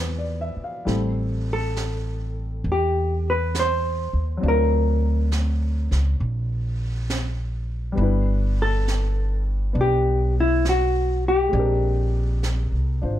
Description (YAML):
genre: jazz ballad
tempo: 68 BPM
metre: 4/4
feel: swing 66% on 8ths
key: G major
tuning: A4 = 441 Hz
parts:
  - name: warm upright piano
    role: accompaniment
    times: 0.0-13.2 s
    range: F3 to F5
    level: -30 LUFS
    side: left 3 dB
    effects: none
  - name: upright bass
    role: bass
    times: 0.0-13.2 s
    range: G1 to E2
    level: -22 LUFS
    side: equal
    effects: none
  - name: jazz brush drum kit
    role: drums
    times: 0.9-13.2 s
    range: brushed snare drum, hi-hat, snare drum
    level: -34 LUFS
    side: right 3 dB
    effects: none
  - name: hollow-body jazz guitar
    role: melody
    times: 1.5-13.2 s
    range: E4 to C5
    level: -23 LUFS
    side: left 1 dB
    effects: none
room: little or no reverb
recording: dark, warm production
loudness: -20 LUFS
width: side -12 dB against mid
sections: 0.0-13.2 A section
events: none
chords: 0.0 E7b9; 0.9 Am7; 4.4 D7alt; 8.0 G6; 11.5 Bb13